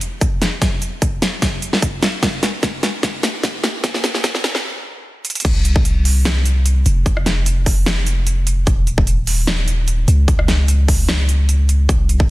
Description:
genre	future bass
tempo	149 BPM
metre	4/4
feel	swing 54% on 16ths, half-time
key	unclear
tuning	A4 = 440 Hz
part	big-room dance drum kit	drums	0.0-12.2 s	crash cymbal, hi-hat, rim click, snare drum	-20 LUFS	equal	small room reverb
part	electronic kick drum	drums	0.2-12.3 s	none	-18 LUFS	equal	small room reverb
part	long sustained 808-style bass	bass	5.4-12.3 s	F1 to Db2	-15 LUFS	equal	tube saturation, sidechain pumping
room	little or no reverb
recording	dense, heavily limited modern master, high-pass filter, lossy compression artefacts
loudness	-15 LUFS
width	side -18 dB against mid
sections	0.0-5.4 A section; 5.4-12.3 B section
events	build-up 0.0-5.4; drum fill 0.0-4.6, 5.2; filter sweep 0.0-5.4; stop 4.6-5.4; drop 5.4-12.3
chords	none

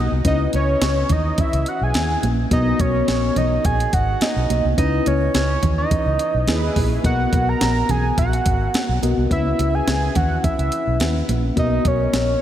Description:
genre	early-eighties boogie funk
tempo	106 BPM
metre	4/4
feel	straight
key	unclear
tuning	A4 = 440 Hz
part	fat analog lead	melody	0.0-12.4 s	C#5 to A#5	-22 LUFS	right 2 dB	chorus, diffuse ambient delay
part	mellow FM electric piano	accompaniment	0.0-12.4 s	B3 to F#5	-25 LUFS	left 5 dB	chorus, phaser
part	vintage muted fingered electric bass	bass	0.0-12.3 s	G#1 to D#2	-21 LUFS	equal	none
part	clean 12-bit digital drum machine	drums	0.2-12.3 s	hi-hat, kick drum, snare drum	-23 LUFS	equal	none
part	congas	percussion	0.5-12.3 s	none	-29 LUFS	right 4 dB	none
part	mellow synth brass	second line	6.5-7.0 s	E4 to B4	-30 LUFS	right 1 dB	chorus, diffuse ambient delay
room	wet lush hall reverb, RT60 2.9 s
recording	dreamy mix soaked in reverb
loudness	-17 LUFS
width	side -11 dB against mid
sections	0.0-12.4 A section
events	band accent 4.8-7.0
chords	0.2 C#m9; 2.5 Bmaj7; 4.8 C#m9; 7.0 Bmaj7; 9.3 C#m9; 11.6 Bmaj7

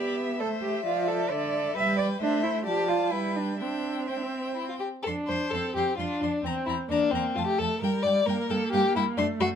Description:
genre	quick classical-period movement for string quartet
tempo	131 BPM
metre	3/4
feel	rubato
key	C major, F major from 5.1 s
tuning	A4 = 441 Hz
part	rich violin	melody	0.0-9.5 s	D5 to C6	-35 LUFS	left 8 dB	none
part	rich violin	second line	0.0-9.5 s	C4 to E5	-29 LUFS	left 4 dB	none
part	warm viola	accompaniment	0.0-9.6 s	D3 to D4	-31 LUFS	right 3 dB	none
part	rich cello	bass	0.0-9.5 s	E2 to E5	-30 LUFS	right 4 dB	none
room	light reverb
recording	minimal, uncompressed stereo recording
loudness	-25 LUFS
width	side -8 dB against mid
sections	0.0-5.1 A section; 5.1-9.6 B section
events	none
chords	0.4 Am; 0.9 Dm/F; 1.8 G; 2.2 Am; 2.7 Dm/F; 3.1 G; 3.6 C; 5.1 F5; 6.4 C7/E; 7.4 F; 7.8 Gm

